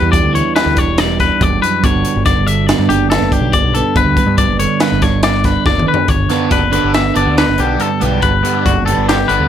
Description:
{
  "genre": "math rock and midwest emo",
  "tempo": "141 BPM",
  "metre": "5/4",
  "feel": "straight",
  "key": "G lydian",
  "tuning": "A4 = 441 Hz",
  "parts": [
    { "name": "twelve-string electric guitar", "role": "accompaniment", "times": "0.0-9.5 s", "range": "E2 to F#4", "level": "-17 LUFS", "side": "right 7 dB", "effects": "phaser" },
    { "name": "twangy electric guitar", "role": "arpeggios", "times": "0.0-9.5 s", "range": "F#4 to E5", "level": "-16 LUFS", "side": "left 8 dB", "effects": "none" },
    { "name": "overdriven picked electric bass", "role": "bass", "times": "0.0-9.5 s", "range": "E1 to G2", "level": "-18 LUFS", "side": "left 1 dB", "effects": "none" },
    { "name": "crisp fusion drum kit", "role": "drums", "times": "0.1-9.4 s", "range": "hi-hat, kick drum, snare drum, toms", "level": "-17 LUFS", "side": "equal", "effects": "none" },
    { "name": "cranked stack guitar", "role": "riff", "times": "6.3-9.5 s", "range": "D3 to D4", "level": "-20 LUFS", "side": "right 2 dB", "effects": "overdrive, phaser" }
  ],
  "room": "little or no reverb",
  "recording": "none",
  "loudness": "-11 LUFS",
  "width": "side -9 dB against mid",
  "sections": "0.0-6.1 A section; 6.1-9.5 B section",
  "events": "drum fill 5.7-6.1",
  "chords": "0.0 Em9; 1.8 Gmaj7"
}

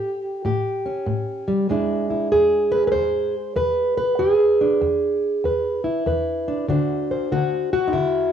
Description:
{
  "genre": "acoustic country blues, solo or duo",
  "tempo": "96 BPM",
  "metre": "4/4",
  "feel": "swing 65% on 8ths",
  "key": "unclear",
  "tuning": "A4 = 440 Hz",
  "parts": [
    { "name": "fingerpicked plugged-in old ladder-braced acoustic guitar", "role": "solo", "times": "0.0-8.3 s", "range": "E2 to C5", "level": "-19 LUFS", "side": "equal", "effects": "cassette tape" }
  ],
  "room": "light reverb",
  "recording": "home recording on cassette, small room ambience",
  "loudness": "-19 LUFS",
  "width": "side -8 dB against mid",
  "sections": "0.0-8.3 A section",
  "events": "none",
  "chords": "0.0 A7; 1.7 E7; 6.7 D7"
}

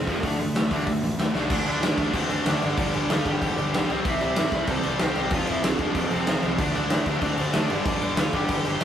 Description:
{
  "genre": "punk rock",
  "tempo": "189 BPM",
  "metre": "4/4",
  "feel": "straight",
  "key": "unclear",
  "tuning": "A4 = 440 Hz",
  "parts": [
    { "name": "crunchy overdriven guitar", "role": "melody", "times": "0.0-8.8 s", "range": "A3 to A5", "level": "-31 LUFS", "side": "right 1 dB", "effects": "none" },
    { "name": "distorted electric guitar", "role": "riff", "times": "0.0-8.8 s", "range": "F2 to D4", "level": "-32 LUFS", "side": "right 4 dB", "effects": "overdrive" },
    { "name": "raw garage guitar", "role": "riff", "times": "0.0-8.8 s", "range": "F2 to D4", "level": "-28 LUFS", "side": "left 2 dB", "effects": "overdrive" },
    { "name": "growling picked electric bass", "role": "bass", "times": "0.0-8.8 s", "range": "F1 to A2", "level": "-33 LUFS", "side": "equal", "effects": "overdrive" },
    { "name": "big rock drum kit", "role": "drums", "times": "0.1-8.8 s", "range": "crash cymbal, hi-hat, kick drum, snare drum", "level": "-25 LUFS", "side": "equal", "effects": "none" },
    { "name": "thick fuzz guitar", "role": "riff", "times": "1.5-8.8 s", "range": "F2 to D4", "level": "-34 LUFS", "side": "equal", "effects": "none" }
  ],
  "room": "light reverb",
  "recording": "rough rehearsal-room recording",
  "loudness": "-22 LUFS",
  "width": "side -9 dB against mid",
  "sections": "0.0-1.5 A section; 1.5-8.8 B section",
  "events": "drum fill 1.3",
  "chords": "0.2 D5; 2.6 G5; 3.9 C; 5.3 F5; 6.6 D5; 7.7 G5"
}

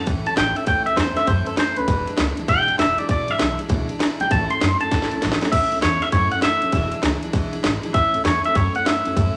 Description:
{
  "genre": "rockabilly",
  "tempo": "198 BPM",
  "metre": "4/4",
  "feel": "swing 64% on 8ths",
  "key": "A major",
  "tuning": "A4 = 440 Hz",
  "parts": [
    { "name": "twangy electric guitar", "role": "melody", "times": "0.0-9.4 s", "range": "A4 to C6", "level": "-23 LUFS", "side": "equal", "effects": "none" },
    { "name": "picked steel-string acoustic guitar", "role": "accompaniment", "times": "0.0-9.4 s", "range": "E2 to E4", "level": "-30 LUFS", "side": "equal", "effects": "none" },
    { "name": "upright bass", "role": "bass", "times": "0.1-9.3 s", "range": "E1 to F#2", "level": "-29 LUFS", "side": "equal", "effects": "none" },
    { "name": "garage drum kit", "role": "drums", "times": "0.1-9.3 s", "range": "crash cymbal, kick drum, ride cymbal, snare drum", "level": "-25 LUFS", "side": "equal", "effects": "none" }
  ],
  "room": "moderate large studio reverb, RT60 1.2 s",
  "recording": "none",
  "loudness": "-20 LUFS",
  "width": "mono",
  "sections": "0.0-5.5 A section; 5.5-9.4 B section",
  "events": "clean electric guitar solo 0.0-5.5; drum fill 4.9-5.5",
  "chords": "0.0 A; 1.9 E7; 4.3 A; 6.7 E7; 7.9 A"
}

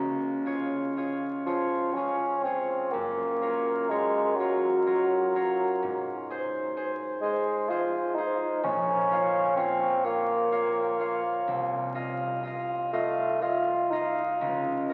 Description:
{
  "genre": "classical, romantic duo for bassoon and harp",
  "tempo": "42 BPM (dotted quarters)",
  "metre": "6/8",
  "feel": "uneven beats, rubato",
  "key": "unclear",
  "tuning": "A4 = 440 Hz",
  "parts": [
    { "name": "concert harp", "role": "accompaniment", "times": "0.0-14.9 s", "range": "Bb1 to F5", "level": "-32 LUFS", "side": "equal", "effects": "none" },
    { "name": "mellow bassoon", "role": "melody", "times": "1.5-14.4 s", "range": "F3 to F4", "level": "-29 LUFS", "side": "equal", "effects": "none" }
  ],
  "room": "wet church reverb, RT60 3.4 s",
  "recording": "very old 78 rpm record, vinyl crackle",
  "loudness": "-28 LUFS",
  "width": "mono",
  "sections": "0.0-14.9 A section",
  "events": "none",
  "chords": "0.0 Db; 2.9 Gbmaj7; 5.8 Ab; 8.6 Bbm; 11.5 F5/C; 14.4 Bbm/Db (rootless)"
}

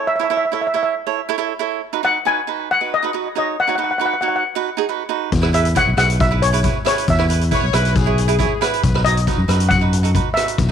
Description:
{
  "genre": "calypso",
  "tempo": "137 BPM",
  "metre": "4/4",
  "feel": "straight",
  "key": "E major",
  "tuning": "A4 = 440 Hz",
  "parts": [
    { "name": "steel pan", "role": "melody", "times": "0.0-10.7 s", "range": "C#5 to G#5", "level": "-19 LUFS", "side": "left 2 dB", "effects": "tape echo" },
    { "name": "cavaquinho", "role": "accompaniment", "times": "0.0-10.7 s", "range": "D#4 to C#5", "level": "-22 LUFS", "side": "right 13 dB", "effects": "none" },
    { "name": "fingered electric bass", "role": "bass", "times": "5.3-10.7 s", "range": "B1 to F#2", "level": "-17 LUFS", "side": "equal", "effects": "none" },
    { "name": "street-band drum kit", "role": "drums", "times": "5.3-10.7 s", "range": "hi-hat, kick drum, rim click", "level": "-21 LUFS", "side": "left 3 dB", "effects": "none" },
    { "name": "clear horn section", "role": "second line", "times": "7.5-8.9 s", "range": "G#4 to C#5", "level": "-24 LUFS", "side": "left 12 dB", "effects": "tape echo" }
  ],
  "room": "light reverb, studio reverb",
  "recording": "1960s-style stereo with parts hard left and right",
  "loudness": "-15 LUFS",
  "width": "side -8 dB against mid",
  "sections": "0.0-10.7 A section",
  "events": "none",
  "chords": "0.0 A; 1.8 B; 5.3 E; 8.8 B"
}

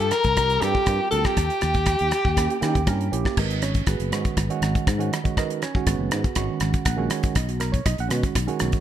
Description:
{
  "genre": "electric jazz fusion",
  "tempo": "120 BPM",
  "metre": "4/4",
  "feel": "straight",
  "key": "G# minor from 3.4 s",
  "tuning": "A4 = 439 Hz",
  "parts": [
    { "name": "breathy alto saxophone", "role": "melody", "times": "0.0-3.1 s", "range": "G4 to Bb4", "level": "-24 LUFS", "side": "left 4 dB", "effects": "none" },
    { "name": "silver concert flute", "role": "second line", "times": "0.0-3.1 s", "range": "G5 to Bb5", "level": "-27 LUFS", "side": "right 4 dB", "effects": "none" },
    { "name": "sustaining fretless electric bass", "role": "bass", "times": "0.0-8.7 s", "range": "F#1 to Eb3", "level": "-25 LUFS", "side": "left 1 dB", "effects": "ensemble chorus" },
    { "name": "damped 70s drum kit", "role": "drums", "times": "0.1-8.8 s", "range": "crash cymbal, hi-hat, kick drum, rim click", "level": "-25 LUFS", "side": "equal", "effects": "none" },
    { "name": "tine electric piano", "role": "accompaniment", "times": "0.4-8.8 s", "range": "D#3 to F#5", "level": "-28 LUFS", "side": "right 8 dB", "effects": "overdrive, phaser" }
  ],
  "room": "moderate plate reverb, RT60 1.1 s, small room ambience",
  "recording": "bright 1980s-style digital production",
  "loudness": "-20 LUFS",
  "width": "side -11 dB against mid",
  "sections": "0.0-3.4 A section; 3.4-8.8 B section",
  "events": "tine electric piano fill 6.6-7.4",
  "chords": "0.0 C7sus4; 1.4 Eb7b9; 3.4 G#m9; 7.4 Bmaj9"
}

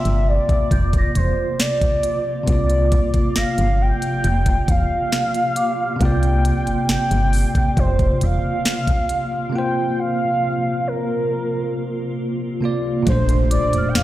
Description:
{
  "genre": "contemporary R&B",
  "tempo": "68 BPM",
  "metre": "4/4",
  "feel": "straight",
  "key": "unclear",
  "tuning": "A4 = 440 Hz",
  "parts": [
    { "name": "warm velvety synth lead", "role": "melody", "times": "0.0-14.0 s", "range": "Bb4 to G5", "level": "-23 LUFS", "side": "equal", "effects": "chorus, digital delay" },
    { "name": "bell-like tine electric piano", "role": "accompaniment", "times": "0.0-14.0 s", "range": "Bb2 to D5", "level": "-24 LUFS", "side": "right 1 dB", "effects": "medium stereo tremolo" },
    { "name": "granular cloud pad", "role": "sustained chords", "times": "0.3-14.0 s", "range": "Bb2 to F4", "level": "-28 LUFS", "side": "left 1 dB", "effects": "built-in reverb, sidechain pumping" },
    { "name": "large celesta", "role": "texture", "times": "0.0-7.1, 13.5-14.0 s", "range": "G5 to Bb6", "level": "-32 LUFS", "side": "right 2 dB", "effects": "digital delay" },
    { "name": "solid FM bass", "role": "bass", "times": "0.1-14.0 s", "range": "E1 to F2", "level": "-19 LUFS", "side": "equal", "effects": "none" },
    { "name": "trap drum kit", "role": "drums", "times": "0.1-14.0 s", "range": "hi-hat, kick drum, snare drum", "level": "-20 LUFS", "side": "equal", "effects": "none" },
    { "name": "impact", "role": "sound effects", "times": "13.1-14.0 s", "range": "none", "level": "-28 LUFS", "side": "equal", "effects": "none" }
  ],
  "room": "light reverb",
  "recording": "played on a big sound system in a bare room, stone room reverb",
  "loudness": "-17 LUFS",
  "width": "side -15 dB against mid",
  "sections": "0.0-13.1 A section",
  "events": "break 9.5-13.1; impact 13.1-14.0",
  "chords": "0.0 C9sus4; 13.1 Bbmaj9"
}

